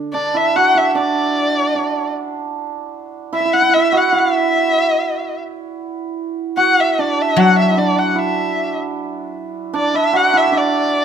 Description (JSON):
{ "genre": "chinese traditional, Chinese chamber ensemble", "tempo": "75 BPM", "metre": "2/4", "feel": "rubato", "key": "D gong mode", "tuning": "A4 = 440 Hz", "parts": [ { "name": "hammered dulcimer", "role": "second line", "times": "0.0-11.0 s", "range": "D4 to A4", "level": "-18 LUFS", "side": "right 6 dB", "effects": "none" }, { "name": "guzheng", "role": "accompaniment", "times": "0.0-0.1, 7.4-9.7 s", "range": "D3 to A4", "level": "-18 LUFS", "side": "left 4 dB", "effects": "none" }, { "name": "dark erhu", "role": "melody", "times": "0.1-11.0 s", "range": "D5 to F#5", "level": "-16 LUFS", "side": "left 3 dB", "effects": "none" } ], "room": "light reverb", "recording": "close, detailed microphones", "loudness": "-14 LUFS", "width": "side -8 dB against mid", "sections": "0.0-11.0 A section", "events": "none", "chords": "none" }